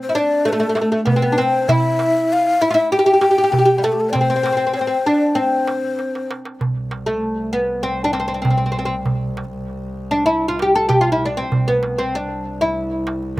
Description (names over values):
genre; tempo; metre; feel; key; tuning
Turkish makam ensemble; 98 BPM; 4/4; straight; C makam rast; A4 = 440 Hz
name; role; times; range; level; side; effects
oud; melody; 0.0-13.4 s; G3 to A4; -17 LUFS; equal; none
breathy mellow ney; second line; 0.0-6.3 s; G4 to G5; -20 LUFS; left 3 dB; slapback echo
darbuka; percussion; 0.6-13.4 s; none; -21 LUFS; right 2 dB; none
rich double bass; drone; 6.6-13.4 s; C2; -29 LUFS; equal; stereo widening
room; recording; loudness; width
little or no reverb; recorded outdoors, with no room sound; -16 LUFS; side -17 dB against mid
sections
0.0-6.6 A section; 6.6-13.4 B section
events
drum fill 6.0-6.6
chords
none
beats
0.46 1.07 | 1.69 2.30 2.92 3.53 | 4.14 4.75 5.37 5.98 | 6.60 7.21 7.83 8.44 | 9.06 9.67 10.29 10.90 | 11.52 12.13 12.75 13.36